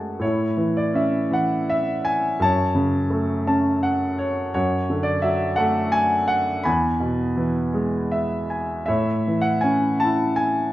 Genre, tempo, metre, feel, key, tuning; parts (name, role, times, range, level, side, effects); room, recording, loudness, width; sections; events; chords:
classical, lyrical solo piano; 83 BPM; 3/4; uneven beats, rubato; A major; A4 = 440 Hz
clear grand piano; solo; 0.0-10.7 s; E2 to B5; -19 LUFS; equal
wet recital hall reverb, RT60 1.4 s; minimal, uncompressed stereo recording; -19 LUFS; side -15 dB against mid
0.2-10.7 A section
grand piano fill 0.0, 3.1-4.5, 7.7-8.9
0.2 A; 2.4 F#m; 4.5 D/F#; 6.7 E; 8.9 A